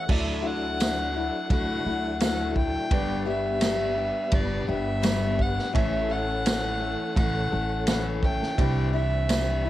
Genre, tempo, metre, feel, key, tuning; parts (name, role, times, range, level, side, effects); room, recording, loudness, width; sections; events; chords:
folk rock and heartland rock; 85 BPM; 4/4; straight; D major; A4 = 439 Hz
dark fiddle; melody; 0.0-9.7 s; D5 to G5; -30 LUFS; right 1 dB; cassette tape
picked steel-string acoustic guitar; accompaniment; 0.0-9.7 s; G2 to A4; -31 LUFS; left 8 dB; cassette tape
tonewheel organ; sustained chords; 0.0-9.7 s; E3 to B4; -34 LUFS; right 1 dB; slow rotary speaker, chorus vibrato, cassette tape
clear upright piano; accompaniment; 0.1-9.7 s; F#3 to E5; -40 LUFS; right 8 dB; cassette tape
upright bass; bass; 0.1-9.7 s; G1 to D2; -30 LUFS; right 1 dB
vintage drum kit; drums; 0.1-9.5 s; crash cymbal, kick drum, ride cymbal, snare drum; -28 LUFS; right 1 dB; cassette tape
tambourine; percussion; 0.8-9.5 s; -39 LUFS; right 12 dB
little or no reverb; home recording on cassette; -23 LUFS; side -14 dB against mid
0.1-9.7 A section
0.1 Dadd9; 2.9 G; 5.7 A; 8.6 Cadd9